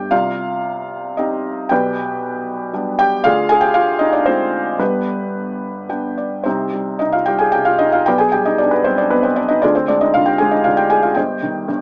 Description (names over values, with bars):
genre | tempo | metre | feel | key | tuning
classical, lyrical solo piano | 115 BPM | 3/4 | rubato | C harmonic minor from 6.5 s | A4 = 442 Hz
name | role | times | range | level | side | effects
felt-muted upright piano | solo | 0.0-11.8 s | G1 to Ab5 | -17 LUFS | equal | none
room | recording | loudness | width
light reverb | small speaker sound | -17 LUFS | mono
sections
0.0-6.5 A section; 6.5-11.8 B section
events
felt piano fill 5.6-6.5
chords
0.1 Cmadd9; 1.7 G/B; 3.3 Ddim; 4.8 G; 6.5 Cm; 8.1 G/B; 9.6 Ddim; 11.2 Cm/G